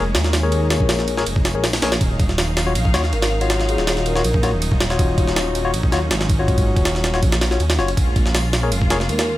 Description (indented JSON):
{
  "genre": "drum and bass, jungle",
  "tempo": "161 BPM",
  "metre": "4/4",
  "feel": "straight",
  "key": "Eb minor",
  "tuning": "A4 = 440 Hz",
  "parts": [
    { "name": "warm symphonic string section", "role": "sustained chords", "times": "0.0-9.4 s", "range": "Gb3 to F5", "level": "-28 LUFS", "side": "equal", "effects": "none" },
    { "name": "barky tine electric piano", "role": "stabs", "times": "0.0-9.0 s", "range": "F4 to Db5", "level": "-24 LUFS", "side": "left 4 dB", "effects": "overdrive, dub echo" },
    { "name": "dark detuned saw bass", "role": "bass", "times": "0.0-9.4 s", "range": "Eb1 to Eb2", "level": "-21 LUFS", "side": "equal", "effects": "none" },
    { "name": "jungle sampler-style drum kit", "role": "drums", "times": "0.1-9.3 s", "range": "hi-hat, kick drum, ride cymbal, snare drum", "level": "-20 LUFS", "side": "equal", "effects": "studio ambience" },
    { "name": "vibraphone with soft mallets", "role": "melody", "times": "3.1-4.4, 9.1-9.2 s", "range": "Ab4 to Bb4", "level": "-26 LUFS", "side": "equal", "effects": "vintage 12-bit sampler grit, dub echo" }
  ],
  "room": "little or no reverb",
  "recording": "none",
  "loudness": "-16 LUFS",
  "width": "side -15 dB against mid",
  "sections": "0.0-9.4 A section",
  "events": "none",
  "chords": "0.0 Bbm7; 2.0 Ebm9; 8.0 Bbm7",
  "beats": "0.15 | 0.52 0.89 1.27 1.64 | 2.01 2.38 2.76 3.13 | 3.50 3.88 4.25 4.62 | 4.99 5.37 5.74 6.11 | 6.48 6.86 7.23 7.60 | 7.97 8.35 8.72 9.09"
}